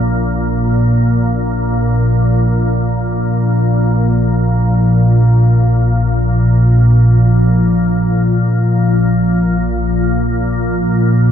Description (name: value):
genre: ambient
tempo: free time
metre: none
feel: none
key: unclear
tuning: A4 = 440 Hz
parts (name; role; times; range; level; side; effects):
- organ-like drone; solo; 0.0-11.3 s; Bb1 to Bb2; -11 LUFS; equal; ensemble chorus, built-in reverb
room: wet cathedral reverb, RT60 6.3 s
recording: dark, warm production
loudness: -11 LUFS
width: side -9 dB against mid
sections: 0.0-11.3 A section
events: none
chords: none